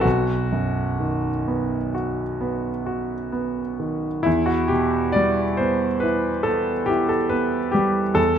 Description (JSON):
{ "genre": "classical, romantic nocturne for solo piano", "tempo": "42-48 BPM (dotted quarters)", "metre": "9/8", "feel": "rubato", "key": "E minor", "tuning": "A4 = 440 Hz", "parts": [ { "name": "clear concert grand piano", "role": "solo", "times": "0.0-8.4 s", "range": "B1 to D5", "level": "-20 LUFS", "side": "equal", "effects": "none" } ], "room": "moderate scoring stage reverb, RT60 1.6 s", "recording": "close, detailed microphones", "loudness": "-20 LUFS", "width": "side -8 dB against mid", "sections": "0.0-8.4 A section", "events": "none", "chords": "0.0 B; 4.3 Em", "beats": "| 0.04 1.48 2.87 | 4.26 5.61 6.90 | 8.17" }